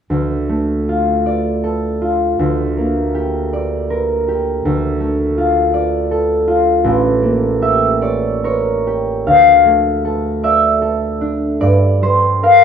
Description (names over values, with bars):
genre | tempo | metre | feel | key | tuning
classical, solo harp piece | 46-55 BPM (dotted quarters) | 6/8 | rubato | D minor | A4 = 440 Hz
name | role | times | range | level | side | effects
concert harp | solo | 0.1-12.6 s | A1 to F5 | -13 LUFS | equal | none
room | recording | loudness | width
light reverb | dark, warm production | -13 LUFS | side -7 dB against mid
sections
0.1-9.3 A section; 9.3-12.6 B section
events
none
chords
0.1 Dm; 2.4 Gm/D; 4.6 Dm; 6.9 A7b9; 9.3 Dm; 11.6 Gm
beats
| 0.10 1.26 | 2.40 3.54 | 4.65 5.74 | 6.85 8.03 | 9.27 10.44 | 11.61